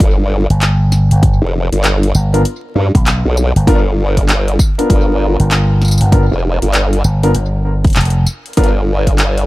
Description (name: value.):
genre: glitch hop.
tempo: 98 BPM.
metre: 4/4.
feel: swing 63% on 16ths.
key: unclear.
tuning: A4 = 440 Hz.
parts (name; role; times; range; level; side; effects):
formant-sweep wobble bass; bass; 0.0-9.5 s; F1 to G2; -13 LUFS; equal; chorus.
electronic kick drum; drums; 0.0-9.2 s; none; -12 LUFS; equal; none.
pop drum kit; drums; 0.0-9.5 s; handclaps, hi-hat, snare drum, tambourine; -19 LUFS; equal; none.
slap bass with an envelope filter; bass; 0.5-8.2 s; F1 to B1; -12 LUFS; equal; none.
dark baby grand piano; stabs; 2.3-8.7 s; B3 to A#4; -19 LUFS; left 1 dB; sidechain pumping, dub echo.
room: little or no reverb.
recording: echo-heavy mix, vinyl crackle.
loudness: -10 LUFS.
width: side -18 dB against mid.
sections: 0.0-9.5 A section.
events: none.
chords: 0.0 G7#9.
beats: 0.00 0.61 | 1.23 1.84 2.45 3.06 | 3.67 4.29 4.90 5.51 | 6.12 6.74 7.35 7.96 | 8.57 9.18.